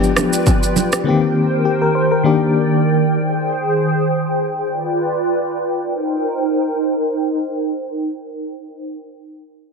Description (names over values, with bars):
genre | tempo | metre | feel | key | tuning
afrobeats | 101 BPM | 4/4 | swing 55% on 16ths | C minor | A4 = 440 Hz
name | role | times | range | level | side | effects
FM electric piano with tremolo | accompaniment | 0.0-3.2 s | D3 to C5 | -16 LUFS | left 4 dB | low-pass filter
hollow soft pad | sustained chords | 0.0-8.9 s | Eb3 to G5 | -18 LUFS | right 2 dB | ensemble chorus, low-pass filter
deep house drum kit | drums | 0.0-1.1 s | kick drum, rim click, shaker | -18 LUFS | right 1 dB | none
bongos and congas | percussion | 0.2-0.9 s | none | -24 LUFS | right 10 dB | none
room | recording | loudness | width
moderate plate reverb, RT60 2.6 s | heavily compressed radio sound | -15 LUFS | side -4 dB against mid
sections
0.0-5.8 A section; 5.8-8.2 B section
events
filter sweep 0.0-5.8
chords
0.0 G7; 1.1 Cm7; 2.2 Ebmaj7; 3.1 Abmaj7; 4.6 G7; 5.8 Cm7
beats
0.46 | 1.06 1.65 2.25 2.84 | 3.43 4.03 4.62 5.22 | 5.81 6.40 7.00 7.59